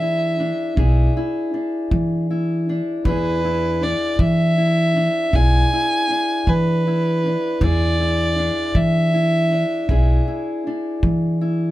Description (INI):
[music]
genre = acoustic country blues, solo or duo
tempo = 53 BPM (dotted quarters)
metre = 12/8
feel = straight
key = E mixolydian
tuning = A4 = 441 Hz
[part]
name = dark fiddle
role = melody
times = 0.0-10.3 s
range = B4 to G#5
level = -21 LUFS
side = right 1 dB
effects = none
[part]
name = fingerpicked steel-string acoustic guitar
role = accompaniment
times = 0.0-11.7 s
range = E3 to G#4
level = -24 LUFS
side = left 2 dB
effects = none
[part]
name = upright bass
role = bass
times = 0.0-11.7 s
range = B1 to E3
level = -19 LUFS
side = equal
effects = none
[part]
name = kick drum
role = drums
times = 0.8-11.2 s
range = none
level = -24 LUFS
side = equal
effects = none
[sound]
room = light reverb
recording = none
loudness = -17 LUFS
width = side -16 dB against mid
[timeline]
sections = 0.0-11.7 A section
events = none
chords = 0.0 E7